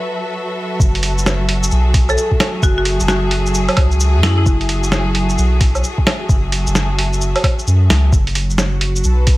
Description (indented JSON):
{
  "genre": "future garage",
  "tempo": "131 BPM",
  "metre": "4/4",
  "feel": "swing 64% on 16ths",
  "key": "F# minor",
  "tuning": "A4 = 440 Hz",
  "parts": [
    { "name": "rich symphonic string section", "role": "sustained chords", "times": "0.0-9.4 s", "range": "F#3 to E5", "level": "-22 LUFS", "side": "equal", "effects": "sidechain pumping" },
    { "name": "soft dub sub bass", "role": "bass", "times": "0.8-9.4 s", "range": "F#1 to F#2", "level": "-16 LUFS", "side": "equal", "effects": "sidechain pumping" },
    { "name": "electronic kick drum", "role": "drums", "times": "0.8-9.4 s", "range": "none", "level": "-14 LUFS", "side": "equal", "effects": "studio reverb" },
    { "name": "lo-fi sampler-style drum kit", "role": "drums", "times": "0.8-9.4 s", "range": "hi-hat, shaker, snare drum, woodblock", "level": "-19 LUFS", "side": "right 1 dB", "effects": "studio reverb" },
    { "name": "marimba with hard mallets", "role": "melody", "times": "2.1-4.4 s", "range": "E4 to A4", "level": "-22 LUFS", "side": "equal", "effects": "dub echo" }
  ],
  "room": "light reverb, digital ambience",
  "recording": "none",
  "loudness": "-13 LUFS",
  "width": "side -18 dB against mid",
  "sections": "0.8-9.4 A section",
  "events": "none",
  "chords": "0.0 B7sus4/F#; 0.8 F#m9; 8.1 D6/F# (rootless)"
}